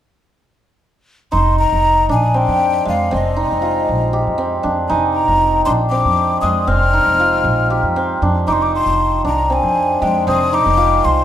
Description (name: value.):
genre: contemporary instrumental, contemporary.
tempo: 235 BPM (eighths).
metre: 7/8.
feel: straight.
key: F dorian.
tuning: A4 = 441 Hz.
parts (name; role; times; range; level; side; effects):
breathy mellow jazz flute; melody; 1.3-11.2 s; Eb5 to F6; -17 LUFS; left 3 dB; none.
hammered dulcimer; arpeggios; 1.3-11.2 s; Ab3 to G4; -17 LUFS; right 2 dB; none.
upright bass; bass; 1.3-11.2 s; F1 to F2; -20 LUFS; equal; none.
room: moderate recital hall reverb, RT60 1.4 s.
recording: minimal, uncompressed stereo recording.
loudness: -13 LUFS.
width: side -11 dB against mid.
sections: 1.3-11.2 A section.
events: none.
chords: 1.3 Fm9; 8.5 Ab/F.